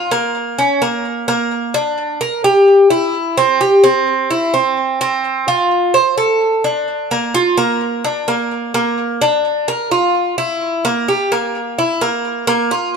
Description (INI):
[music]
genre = latin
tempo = 128 BPM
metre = 4/4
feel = straight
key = unclear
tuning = A4 = 445 Hz
[part]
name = Cuban tres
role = solo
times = 0.0-13.0 s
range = Bb3 to C5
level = -13 LUFS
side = right 1 dB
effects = tape echo
[sound]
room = moderate studio reverb, RT60 0.8 s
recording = dark, warm production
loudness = -13 LUFS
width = side -6 dB against mid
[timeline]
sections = 0.0-12.5 A section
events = none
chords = none